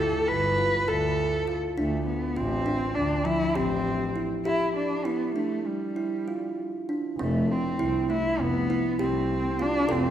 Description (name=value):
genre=contemporary instrumental, chamber music in an uneven meter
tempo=200 BPM (eighths)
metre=9/8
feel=straight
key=G mixolydian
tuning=A4 = 440 Hz
part: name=dark cello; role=melody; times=0.0-10.1 s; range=G3 to B4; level=-27 LUFS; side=equal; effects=none
part: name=kalimba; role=arpeggios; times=0.0-10.1 s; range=F3 to A4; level=-29 LUFS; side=right 1 dB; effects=none
part: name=clear double bass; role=bass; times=0.0-10.1 s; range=F1 to D2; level=-30 LUFS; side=equal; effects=none
room=wet scoring stage reverb, RT60 1.9 s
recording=recorded in a church or concert hall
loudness=-24 LUFS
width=side -10 dB against mid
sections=0.0-7.2 A section; 7.2-10.1 B section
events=break 4.5-7.2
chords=0.0 G9; 1.8 D7(no3); 4.5 G5; 7.2 F